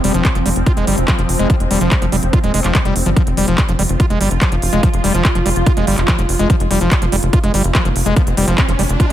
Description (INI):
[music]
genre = psychedelic trance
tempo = 144 BPM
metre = 4/4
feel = straight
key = F minor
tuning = A4 = 440 Hz
[part]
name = swarming drone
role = sustained chords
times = 0.0-9.1 s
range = F3 to F4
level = -22 LUFS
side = right 1 dB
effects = built-in reverb, sidechain pumping
[part]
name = screaming distorted acid line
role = riff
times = 0.0-9.1 s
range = F3 to F4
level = -20 LUFS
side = moving between left 4 dB and right 5 dB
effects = distortion, chorus, auto-pan, sidechain pumping, tape echo
[part]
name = tight sequencer bass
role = bass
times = 0.0-9.1 s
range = Eb1 to G1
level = -17 LUFS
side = equal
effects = none
[part]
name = techno drum kit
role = drums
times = 0.0-9.1 s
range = handclaps, hi-hat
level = -22 LUFS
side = right 1 dB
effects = none
[part]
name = electronic kick drum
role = drums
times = 0.2-9.1 s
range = none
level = -15 LUFS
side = equal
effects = none
[part]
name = riser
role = sound effects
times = 7.8-9.1 s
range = none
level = -27 LUFS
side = right 1 dB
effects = none
[sound]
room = digital ambience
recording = none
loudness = -12 LUFS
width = side -12 dB against mid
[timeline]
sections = 0.0-9.1 A section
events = riser 7.8-9.1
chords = 0.0 F5